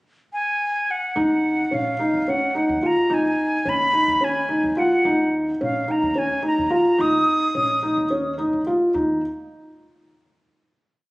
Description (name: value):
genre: contemporary instrumental, chamber music in an uneven meter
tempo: 216 BPM (eighths)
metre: 7/8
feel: straight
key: Eb minor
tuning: A4 = 441 Hz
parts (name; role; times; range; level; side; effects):
- breathy bright concert flute; melody; 0.3-8.4 s; F5 to Eb6; -22 LUFS; equal; none
- felt-muted upright piano; arpeggios; 1.2-9.2 s; Db4 to F4; -20 LUFS; equal; none
- upright bass; bass; 1.2-9.2 s; Bb1 to Eb2; -37 LUFS; equal; none
room: moderate recital hall reverb, RT60 1.6 s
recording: recorded on a phone in the room, studio ambience, nothing above 10.3 kHz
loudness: -18 LUFS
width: side -22 dB against mid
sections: 0.0-1.2 pickup bar; 1.2-8.9 A section; 8.9-10.9 final note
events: none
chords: 0.0 N.C.; 1.2 Ebm7; 3.1 Abm/Eb; 5.1 Eb5; 8.9 N.C.